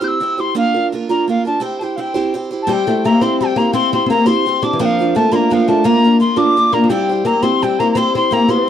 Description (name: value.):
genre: celtic folk, Celtic jig.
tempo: 114 BPM (dotted quarters).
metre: 6/8.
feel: straight.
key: C mixolydian.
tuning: A4 = 439 Hz.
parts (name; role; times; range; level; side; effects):
mellow tin whistle; melody; 0.0-8.7 s; F5 to G6; -17 LUFS; left 1 dB; none.
picked steel-string acoustic guitar; accompaniment; 0.0-8.7 s; Bb3 to C5; -18 LUFS; right 5 dB; none.
oud; second line; 2.7-8.7 s; E3 to D4; -16 LUFS; left 4 dB; none.
room: little or no reverb.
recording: dry, close 1970s-style studio recording.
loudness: -13 LUFS.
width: side -9 dB against mid.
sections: 0.0-2.7 A section; 2.7-8.7 A section.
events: none.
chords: 0.0 C; 0.6 Bb; 1.6 C; 4.8 Bb; 6.9 C.